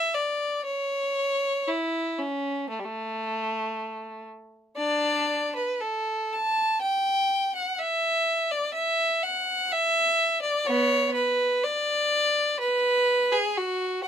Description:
classical, baroque-style suite movement for unaccompanied violin; 57-64 BPM; 4/4; rubato; D major; A4 = 442 Hz
clear violin; solo; 0.0-14.1 s; G3 to A5; -23 LUFS; equal
little or no reverb; close, detailed microphones; -23 LUFS; side -8 dB against mid
0.0-14.1 A section

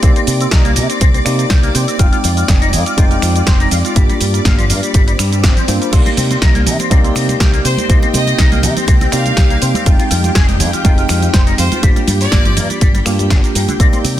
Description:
nu-disco, nu disco; 122 BPM; 4/4; swing 54% on 16ths; C minor; A4 = 439 Hz
tine electric piano; accompaniment; 0.0-14.2 s; Ab3 to G5; -20 LUFS; right 1 dB; fast stereo tremolo, sidechain pumping, dub echo
string machine, full ensemble; sustained chords; 0.0-14.2 s; G4 to D6; -25 LUFS; equal; ensemble chorus, sidechain pumping
electric guitar with an envelope filter; riff; 0.0-14.2 s; D3 to F5; -22 LUFS; left 4 dB; ensemble chorus, dub echo
fingered electric bass with an envelope filter; bass; 0.0-14.2 s; F1 to C3; -16 LUFS; equal; sidechain pumping
electronic kick drum; drums; 0.0-13.9 s; -12 LUFS; equal; small room ambience
house drum kit; drums; 0.0-14.2 s; crash cymbal, finger snaps, hi-hat, shaker, snare drum; -19 LUFS; right 1 dB; small room ambience
swell; sound effects; 5.1-5.9 s; -25 LUFS; right 1 dB
congas; percussion; 6.1-14.2 s; -24 LUFS; right 4 dB
bright chamber violin section; melody; 7.7-12.7 s; C5 to F5; -23 LUFS; equal; ping-pong delay
digital ambience; dense, heavily limited modern master; -10 LUFS; side -12 dB against mid
0.0-14.2 A section
swell 5.1-5.9
0.0 Cm7; 2.0 Fm9; 4.0 Gm7; 5.9 Cm7; 9.9 Fm9; 11.8 Gm7

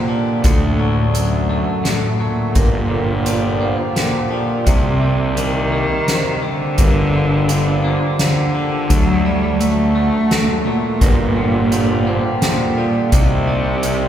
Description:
post-rock; 85 BPM; 3/4; straight; G minor; A4 = 440 Hz
rich cello; melody; 0.0-14.1 s; F#2 to A3; -18 LUFS; equal
pedal harmonium; sustained chords; 0.0-14.1 s; C3 to Bb4; -26 LUFS; equal
twangy electric guitar; arpeggios; 0.0-14.1 s; G2 to Bb3; -26 LUFS; left 1 dB
vibraphone with medium hard mallets; arpeggios; 0.0-14.1 s; A4 to F#5; -26 LUFS; right 2 dB
fuzz fingered electric bass; bass; 0.4-14.1 s; G1 to D2; -22 LUFS; equal; overdrive
soft-mallet drum kit; drums; 0.4-14.0 s; hi-hat, kick drum, snare drum; -19 LUFS; equal
wet cathedral reverb, RT60 4.4 s; recorded in a church or concert hall; -14 LUFS; side -10 dB against mid
0.0-14.1 A section
0.4 D; 2.6 Gm7; 4.7 Cm7; 6.8 Gm7; 8.9 D; 11.0 Gm7; 13.1 Cm

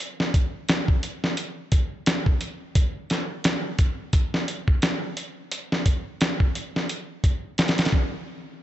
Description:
trip hop; 87 BPM; 4/4; swing 57% on 16ths
dusty soul sampler-style drum kit; drums; 0.2-8.1 s; hi-hat, kick drum, snare drum; -22 LUFS; equal
little or no reverb; nothing above 8.0 kHz; -22 LUFS; side -13 dB against mid
0.0-8.3 A section

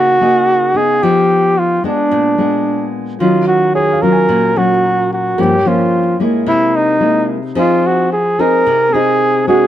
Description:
bossa nova; 110 BPM; 4/4; straight; A4 = 439 Hz
mellow flugelhorn; melody; 0.0-9.7 s; D4 to Bb4; -13 LUFS; equal
nylon-string guitar; accompaniment; 0.0-9.7 s; G2 to Ab4; -15 LUFS; left 1 dB
warm baby grand piano; accompaniment; 3.8-6.5 s; Bb4 to Ab5; -24 LUFS; right 4 dB
light reverb; close, detailed microphones; -11 LUFS; side -11 dB against mid
0.0-9.7 A section
0.0 Gb69; 1.0 Fm7b5; 2.1 Bb7b9; 3.2 Ebm9; 5.4 Gm7b5; 6.5 C7alt; 7.6 Fm7

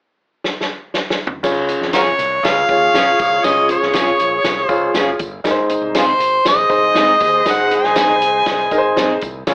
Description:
uptempo 1960s-style soul; 120 BPM; 4/4; straight; Db major; A4 = 440 Hz
vintage drum kit; drums; 0.4-9.5 s; crash cymbal, hi-hat, kick drum, snare drum, toms; -21 LUFS; equal
warm upright piano; accompaniment; 1.4-9.5 s; Ab2 to Eb5; -19 LUFS; equal; plate reverb
modern bright fingered electric bass; bass; 1.4-9.5 s; Gb1 to Ab2; -28 LUFS; equal
congas; percussion; 1.4-9.5 s; -32 LUFS; equal
tambourine; percussion; 1.4-9.5 s; -33 LUFS; right 1 dB
mellow harmonica; melody; 1.9-9.2 s; F4 to Ab5; -14 LUFS; equal; plate reverb
electric guitar through a small old amp; stabs; 1.9-9.1 s; C4 to Ab4; -24 LUFS; right 1 dB; wide subtle chorus, plate reverb, analog delay
mellow horn section; second line; 2.4-9.5 s; F4 to F5; -20 LUFS; equal; plate reverb
moderate studio reverb, RT60 0.5 s; AM radio sound; -13 LUFS; side -30 dB against mid
0.0-1.4 A section; 1.4-9.5 B section
drum fill 0.4-1.4
0.0 N.C.; 1.4 Db; 5.5 Ab

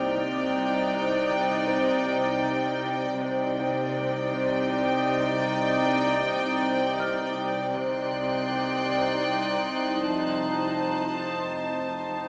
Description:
cinematic; 79 BPM; 3/4; straight; C minor; A4 = 440 Hz
warm studio violin section; melody; 0.0-12.2 s; G5 to A5; -33 LUFS; equal
warm studio violin section; second line; 0.0-12.2 s; C5 to D5; -32 LUFS; equal
rich studio viola section; accompaniment; 0.0-12.2 s; Eb4; -30 LUFS; equal
glass harmonica; sustained chords; 0.0-12.3 s; C5 to A5; -33 LUFS; equal
concert harp; riff; 0.0-12.3 s; F2 to C3; -31 LUFS; equal
dark studio double bass section; bass; 0.0-12.2 s; F1 to C2; -41 LUFS; equal
warm chamber cello section; bass; 0.0-12.2 s; F2 to C3; -32 LUFS; equal
organ-like drone; drone; 0.0-12.3 s; C2; -36 LUFS; equal; ensemble chorus, built-in reverb
dark baby grand piano; texture; 0.0-12.3 s; Bb3 to F6; -39 LUFS; equal
warm chamber violin section; texture; 0.0-2.8, 7.8-12.1 s; C6 to F#6; -38 LUFS; equal
wet recital hall reverb, RT60 1.5 s; small speaker sound; -23 LUFS; side -37 dB against mid
0.0-12.3 A section
0.0 Cmadd9; 10.1 F7

